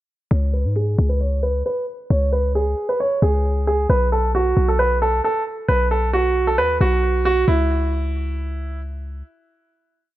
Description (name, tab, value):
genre	hip hop, trap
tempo	134 BPM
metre	4/4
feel	half-time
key	C# minor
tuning	A4 = 440 Hz
part	clear concert grand piano	melody	0.3-8.8 s	E4 to C#5	-20 LUFS	right 2 dB	low-pass filter
part	warm 808-style bass	bass	0.3-9.2 s	B1 to G#2	-20 LUFS	left 1 dB	none
room	light reverb, small room ambience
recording	none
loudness	-17 LUFS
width	side -14 dB against mid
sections	0.3-7.5 breakdown; 7.5-10.2 final chord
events	filter sweep on grand piano 0.3-7.5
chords	0.3 C#5; 3.9 B5; 7.5 C#m